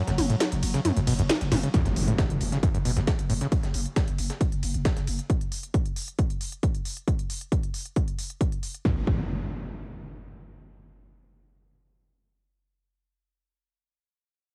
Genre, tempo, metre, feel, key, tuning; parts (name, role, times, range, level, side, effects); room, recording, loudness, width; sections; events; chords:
driving peak-time techno; 135 BPM; 4/4; straight; F# minor; A4 = 439 Hz
overdriven acid bass; riff; 0.0-3.5 s; F#2 to C#3; -30 LUFS; equal; distortion, sidechain pumping, cassette tape
swarming drone; drone; 0.0-1.8 s; F#3; -42 LUFS; equal
growling 808-style bass; bass; 0.1-5.2 s; F#1; -32 LUFS; equal; overdrive, sidechain pumping, low-pass filter
breakbeat sampler-style drum kit; drums; 0.1-5.2 s; ride cymbal, snare drum; -40 LUFS; equal; high-pass filter on snare, sidechain pumping on cymbals, high-pass filter on cymbals
techno drum kit; drums; 0.1-8.8 s; hi-hat, ride cymbal, snare drum, toms; -33 LUFS; equal; sidechain pumping on hats, sidechain pumping on toms, sidechain pumping on cymbals
electronic kick drum; drums; 1.7-9.2 s; -28 LUFS; equal
impact; sound effects; 1.7-3.5, 8.8-13.4 s; -34 LUFS; equal
little or no reverb; home recording on cassette; -27 LUFS; mono
0.0-1.7 A section; 1.7-8.9 B section; 8.9-12.4 C section
break 0.0-1.7; drop 0.0-1.7; impact 1.7-3.5